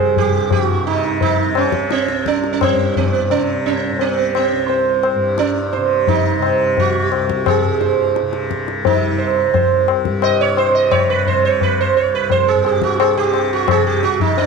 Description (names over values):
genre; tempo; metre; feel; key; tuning
indian classical, Hindustani; 86 BPM; 4/4; straight; C raga todi; A4 = 440 Hz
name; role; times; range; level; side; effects
sitar; melody; 0.0-14.5 s; B3 to Eb5; -16 LUFS; right 9 dB; none
tanpura; drone; 0.0-14.5 s; C2 to C3; -22 LUFS; left 2 dB; none
tabla; percussion; 0.2-14.5 s; none; -19 LUFS; left 10 dB; none
room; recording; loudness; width
moderate echo chamber reverb, RT60 2.2 s; 1960s-style stereo with parts hard left and right; -14 LUFS; side -4 dB against mid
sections
0.0-14.5 A section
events
none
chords
none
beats
| 0.51 1.21 1.90 2.60 | 3.29 3.99 4.68 5.38 | 6.08 6.77 7.46 8.16 | 8.85 9.54 10.23 10.92 | 11.62 12.30 12.99 13.69 | 14.37